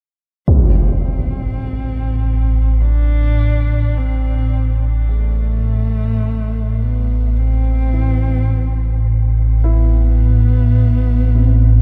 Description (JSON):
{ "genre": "dark ambient drone", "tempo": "53 BPM", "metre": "4/4", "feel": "straight", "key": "A minor", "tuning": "A4 = 441 Hz", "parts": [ { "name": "dark horsehead fiddle", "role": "melody", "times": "0.5-11.8 s", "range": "A3 to D4", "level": "-28 LUFS", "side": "equal", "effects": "delay" }, { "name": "deep rumbling drone", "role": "drone", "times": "1.2-11.8 s", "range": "A1 to A2", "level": "-16 LUFS", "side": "equal", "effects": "built-in reverb, phaser" }, { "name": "impact", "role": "percussion", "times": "0.5-0.7 s", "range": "none", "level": "-18 LUFS", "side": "equal", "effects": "low-pass filter on sfx" }, { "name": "dark baby grand piano", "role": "arpeggios", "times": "2.8-11.8 s", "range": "D2 to E4", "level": "-35 LUFS", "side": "equal", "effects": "delay" } ], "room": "wet cathedral reverb, RT60 5.8 s", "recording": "in a vast, echoing space", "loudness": "-16 LUFS", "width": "mono", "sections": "0.5-11.8 A section", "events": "fade-in on grand piano 0.5-11.8; fade-in on horsehead fiddle 0.5-11.8", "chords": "0.5 Am", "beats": "| 0.48 1.64 2.80 3.95 | 5.09 6.23 7.37 8.50 | 9.64 10.78" }